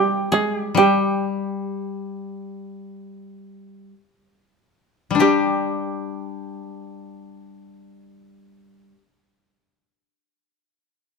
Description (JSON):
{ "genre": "japanese traditional, Japanese chamber music", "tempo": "free time", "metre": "none", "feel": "none", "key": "unclear", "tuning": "A4 = 442 Hz", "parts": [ { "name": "koto", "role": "melody", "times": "0.0-9.0 s", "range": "G4 to Ab4", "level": "-23 LUFS", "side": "right 1 dB", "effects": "none" }, { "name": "shamisen", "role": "second line", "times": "0.0-9.0 s", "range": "G3 to Ab3", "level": "-22 LUFS", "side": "right 7 dB", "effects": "none" }, { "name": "koto", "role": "accompaniment", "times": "0.0-9.0 s", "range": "G3 to G4", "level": "-24 LUFS", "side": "left 7 dB", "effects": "none" } ], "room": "light reverb", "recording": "close, detailed microphones", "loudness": "-19 LUFS", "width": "side -4 dB against mid", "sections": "0.0-5.2 A section; 5.2-10.2 B section", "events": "slowing down 0.0-5.2", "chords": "none" }